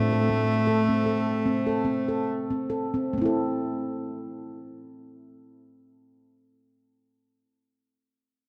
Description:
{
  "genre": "world meditative, meditative tuned percussion",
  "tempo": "66-81 BPM",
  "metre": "4/4",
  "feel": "swing 54% on 16ths",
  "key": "A minor",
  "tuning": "A4 = 440 Hz",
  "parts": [
    { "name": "clear cello", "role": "melody", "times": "0.0-2.3 s", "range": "A3", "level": "-29 LUFS", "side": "equal", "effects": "none" },
    { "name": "handpan", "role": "arpeggios", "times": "0.0-7.1 s", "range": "A2 to A4", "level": "-28 LUFS", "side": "equal", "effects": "none" }
  ],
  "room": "wet church reverb, RT60 3.6 s",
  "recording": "dark, warm production",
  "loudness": "-26 LUFS",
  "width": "mono",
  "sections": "0.0-3.1 A section; 3.1-6.8 B section",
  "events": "slowing down 0.0-3.1",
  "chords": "0.0 Am",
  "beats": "0.66 1.44 2.27 | 3.14 4.04 4.95 5.85"
}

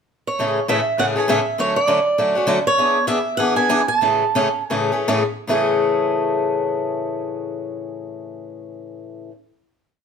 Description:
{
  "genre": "jazz",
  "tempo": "142-202 BPM",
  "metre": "4/4",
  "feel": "swing 59% on 8ths",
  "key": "A major",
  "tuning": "A4 = 440 Hz",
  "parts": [
    { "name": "picked swing-style acoustic guitar", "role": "melody", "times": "0.3-5.0 s", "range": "C#5 to A5", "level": "-19 LUFS", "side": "right 3 dB", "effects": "none" },
    { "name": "picked swing-style acoustic guitar", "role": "accompaniment", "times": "0.4-9.3 s", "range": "A2 to G#4", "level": "-20 LUFS", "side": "left 2 dB", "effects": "none" }
  ],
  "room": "moderate studio reverb, RT60 0.7 s",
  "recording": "none",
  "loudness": "-17 LUFS",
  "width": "side -6 dB against mid",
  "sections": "0.0-0.4 pickup bar; 0.4-5.5 A section; 5.5-8.9 final chord",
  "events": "slowing down 2.8-5.5",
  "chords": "0.4 Amaj7; 1.6 Dmaj7; 2.8 E7; 4.0 Amaj7",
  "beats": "0.09 | 0.39 0.69 0.98 1.28 | 1.58 1.87 2.17 2.47 | 2.77 3.06 3.37 3.68 | 4.00 4.34 4.70 5.08 | 5.48 5.91 6.33 6.75 | 7.17 7.60 8.02 8.44"
}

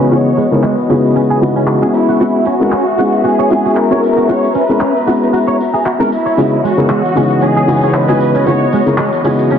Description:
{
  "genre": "nu-disco, nu disco",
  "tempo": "115 BPM",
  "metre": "4/4",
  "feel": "swing 55% on 16ths",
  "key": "F# mixolydian",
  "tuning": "A4 = 439 Hz",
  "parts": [
    { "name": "bright symphonic violin section", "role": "melody", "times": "0.0-8.9 s", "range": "E4 to C#5", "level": "-18 LUFS", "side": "equal", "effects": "ping-pong delay" },
    { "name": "dark baby grand piano", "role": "accompaniment", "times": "0.0-9.6 s", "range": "C#3 to A#4", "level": "-13 LUFS", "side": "left 1 dB", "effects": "none" },
    { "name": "warm studio string section", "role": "sustained chords", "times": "0.0-9.6 s", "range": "E3 to A#5", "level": "-17 LUFS", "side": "left 1 dB", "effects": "low-pass filter" },
    { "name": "clean electric guitar", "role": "riff", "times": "0.0-9.6 s", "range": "G#3 to C#5", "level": "-19 LUFS", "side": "right 2 dB", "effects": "ensemble chorus, low-pass filter" },
    { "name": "tambourine and handclaps", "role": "drums", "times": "0.0-9.6 s", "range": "none", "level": "-25 LUFS", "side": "equal", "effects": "none" },
    { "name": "tambourine", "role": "percussion", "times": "6.4-9.6 s", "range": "none", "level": "-49 LUFS", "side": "left 2 dB", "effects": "none" }
  ],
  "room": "moderate echo chamber reverb, RT60 2.3 s",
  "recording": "dense, heavily limited modern master, low-pass filter",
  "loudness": "-10 LUFS",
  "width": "side -8 dB against mid",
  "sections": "0.0-9.6 A section",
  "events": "filter sweep on clean electric guitar 0.0-9.6; filter sweep on string section 0.0-9.6; filter sweep 0.0-9.6",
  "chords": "0.0 C#m11; 1.9 F#9sus4; 6.4 C#m11",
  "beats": "| 0.12 0.64 1.16 1.68 | 2.20 2.72 3.25 3.77 | 4.29 4.81 5.33 5.86 | 6.38 6.90 7.42 7.94 | 8.46 8.98 9.51"
}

